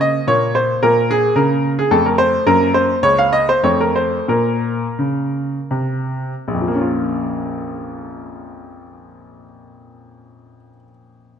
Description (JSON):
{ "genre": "classical, baroque-style suite movement for grand piano", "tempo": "77-112 BPM", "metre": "3/4", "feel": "rubato", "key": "Bb minor", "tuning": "A4 = 441 Hz", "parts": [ { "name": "bright baby grand piano", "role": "solo", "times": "0.0-11.4 s", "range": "Bb1 to F5", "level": "-15 LUFS", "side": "equal", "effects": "none" } ], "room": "moderate scoring stage reverb, RT60 2.0 s", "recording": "close, detailed microphones", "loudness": "-14 LUFS", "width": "side -8 dB against mid", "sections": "0.0-6.5 A section; 6.5-10.9 B section", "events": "slowing down 1.6-6.5", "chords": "0.3 N.C.; 0.8 Bbm; 1.9 F; 2.5 Gb; 3.6 F; 4.3 Bbm" }